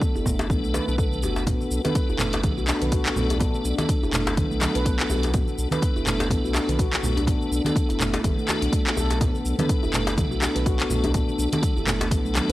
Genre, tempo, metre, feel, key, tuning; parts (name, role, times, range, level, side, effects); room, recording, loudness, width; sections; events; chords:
afro house; 124 BPM; 4/4; swing 57% on 16ths; B minor; A4 = 441 Hz
tonewheel organ; stabs; 0.0-12.5 s; B3 to A4; -28 LUFS; left 1 dB; chorus vibrato, slow rotary speaker, sidechain pumping, analog delay
electronic kick drum; drums; 0.0-12.2 s; -24 LUFS; equal; overdrive
house drum kit; drums; 0.0-12.5 s; handclaps, hi-hat, shaker, toms; -29 LUFS; equal; overdrive
congas; percussion; 0.0-12.5 s; -31 LUFS; right 2 dB
handpan; arpeggios; 0.2-12.5 s; F#3 to B4; -29 LUFS; equal; sidechain pumping, analog delay
warm sub bass; bass; 0.2-12.5 s; F#1 to B1; -28 LUFS; equal; sidechain pumping
djembe; percussion; 0.2-12.5 s; -32 LUFS; left 2 dB
light reverb, digital ambience; dry, gritty hardware recording, transformer saturation; -21 LUFS; side -16 dB against mid
0.0-12.5 A section
0.0 Bm7